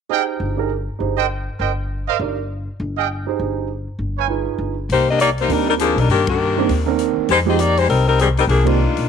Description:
jazz, big band swing; 201 BPM; 4/4; swing 60% on 8ths; C minor; A4 = 435 Hz
warm concert grand piano; accompaniment; 0.1-8.8 s; Eb3 to D5; -22 LUFS; right 13 dB
clear trumpet section; stabs; 0.1-4.3 s; Ab4 to Ab5; -22 LUFS; right 10 dB
upright bass; bass; 0.4-9.1 s; G1 to G2; -21 LUFS; left 1 dB
clear saxophone section; melody; 4.9-9.1 s; Eb3 to Eb5; -16 LUFS; left 5 dB
swinging big-band drum kit; drums; 4.9-9.0 s; hi-hat, kick drum, ride cymbal; -32 LUFS; left 6 dB
light reverb, small room ambience; 1960s-style stereo with parts hard left and right; -16 LUFS; side -7 dB against mid
0.1-4.9 A section; 4.9-9.1 B section
band accent 6.2, 8.6
0.1 Fm9 (rootless); 1.3 Cm7; 2.5 Fm9 (rootless); 3.7 Db7 (rootless); 4.9 Cm9; 7.3 Fm9; 8.5 Cm9

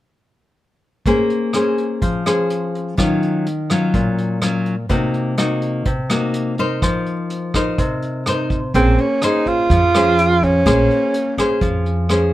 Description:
bossa nova; 125 BPM; 4/4; straight; Bb minor; A4 = 438 Hz
nylon-string guitar; accompaniment; 1.1-12.3 s; Bb2 to C5; -18 LUFS; left 2 dB
vintage brush drum kit; drums; 1.1-12.2 s; hi-hat, kick drum, rim click; -24 LUFS; right 1 dB
breathy tenor saxophone; melody; 8.7-11.4 s; C4 to F4; -16 LUFS; right 2 dB
upright bass; bass; 8.7-12.3 s; Bb1 to F2; -18 LUFS; right 1 dB
little or no reverb; close, detailed microphones; -15 LUFS; side -14 dB against mid
1.1-8.7 A section; 8.7-12.3 B section
1.1 Bbm9; 3.0 Ebm9; 4.9 Cm7b5; 6.8 F7sus4; 8.7 Bbm9

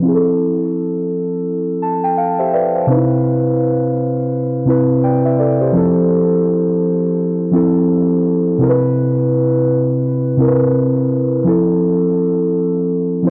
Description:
hip hop; 84 BPM; 4/4; swing 61% on 16ths; C major; A4 = 440 Hz
muted felt-like synth keys; solo; 0.0-13.3 s; C3 to A5; -15 LUFS; equal; chorus, low-pass filter
light reverb; dry, gritty hardware recording, cassette tape; -15 LUFS; mono
0.0-2.9 A section; 2.9-13.3 B section
synth keys fill 1.4-2.9
0.0 Fmaj7; 2.9 Cmaj7; 5.7 Fmaj7; 8.6 Cmaj7; 11.4 Fmaj7

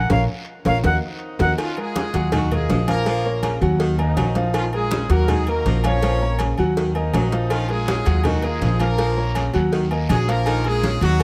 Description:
latin, salsa; 162 BPM; 4/4; straight; Bb minor; A4 = 440 Hz
bright reedy silver concert flute; melody; 0.0-1.5 s; F5 to Gb5; -27 LUFS; equal
bright upright piano; accompaniment; 0.0-11.2 s; F3 to Gb5; -27 LUFS; equal
upright bass; bass; 0.0-11.2 s; Bb1 to Eb2; -24 LUFS; equal
congas; percussion; 0.1-11.2 s; -29 LUFS; equal
cowbell; percussion; 0.1-11.2 s; -33 LUFS; equal
guiro; percussion; 0.1-1.5, 7.5-11.2 s; -42 LUFS; equal
timbales and agogo bells; percussion; 0.1-11.2 s; -32 LUFS; equal
clear horn section; melody; 1.0-11.2 s; Eb3 to Db5; -29 LUFS; equal
clear saxophone section; second line; 1.6-11.0 s; Db3 to Gb3; -33 LUFS; equal
light reverb; close, detailed microphones; -20 LUFS; mono
0.0-1.6 A section; 1.6-11.2 B section
flute solo 0.0-1.6; band accent 0.1-1.6
0.1 Bbm; 0.8 Ebm; 1.6 Bbm7; 2.3 Ebm; 3.1 Bbm; 3.8 Ebm; 4.5 Bbm7; 5.3 Ebm; 6.0 Bbm; 6.8 Ebm; 7.5 Bbm7; 8.2 Ebm; 9.0 Bbm; 9.7 Ebm; 10.5 Bbm7

